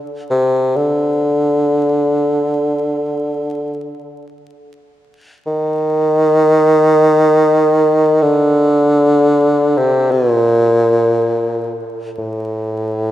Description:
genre	caucasian folk, Caucasian lament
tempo	free time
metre	none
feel	none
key	unclear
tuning	A4 = 438 Hz
part	mellow bassoon	solo	0.3-13.1 s	A2 to Eb3	-12 LUFS	equal	analog delay
room	moderate recital hall reverb, RT60 1.8 s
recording	vinyl crackle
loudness	-12 LUFS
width	side -13 dB against mid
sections	0.0-13.1 A section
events	none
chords	none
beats	free time

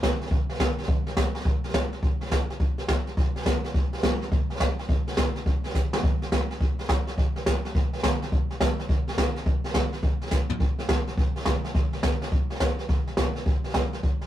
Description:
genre	rock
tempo	210 BPM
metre	4/4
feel	swing 64% on 8ths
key	none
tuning	none
part	jazz brush drum kit	drums	0.0-14.2 s	hi-hat, kick drum, snare drum, toms	-23 LUFS	equal	none
room	light reverb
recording	rough rehearsal-room recording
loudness	-23 LUFS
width	side -12 dB against mid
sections	0.0-1.5 A section; 1.5-14.3 B section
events	drum fill 5.7, 10.3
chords	none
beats	0.03 | 0.31 0.60 0.88 1.17 | 1.46 1.74 2.03 2.31 | 2.60 2.89 3.17 3.46 | 3.75 4.03 4.32 4.60 | 4.89 5.17 5.46 5.75 | 6.03 6.32 6.61 6.89 | 7.18 7.46 7.75 8.03 | 8.32 8.60 8.89 9.18 | 9.46 9.75 10.03 10.32 | 10.60 10.89 11.18 11.46 | 11.75 12.03 12.32 12.60 | 12.89 13.18 13.46 13.75 | 14.03

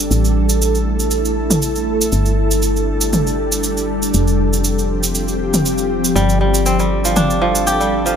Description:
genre	afro house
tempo	119 BPM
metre	4/4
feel	swing 55% on 16ths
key	unclear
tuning	A4 = 440 Hz
part	ethereal airy pad	sustained chords	0.0-8.2 s	F3 to A4	-18 LUFS	equal	ensemble chorus, built-in reverb, vintage 12-bit sampler grit
part	woody FM bass	bass	0.0-8.2 s	F1 to A1	-19 LUFS	equal	none
part	cabasa	percussion	0.1-8.2 s	none	-21 LUFS	right 3 dB	none
part	electronic toms	drums	1.5-7.3 s	none	-18 LUFS	left 1 dB	low-pass filter on snare, low-pass filter on cymbals, low-pass filter on toms
part	kora	arpeggios	6.2-8.2 s	F3 to G4	-16 LUFS	right 2 dB	digital delay
room	light reverb, studio reverb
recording	none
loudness	-14 LUFS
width	side -8 dB against mid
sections	0.0-8.2 A section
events	none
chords	0.1 A5; 2.1 G5; 4.1 F5; 6.2 G5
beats	| 0.11 0.61 1.11 1.62 | 2.12 2.63 3.13 3.64 | 4.14 4.64 5.15 5.65 | 6.16 6.66 7.17 7.67

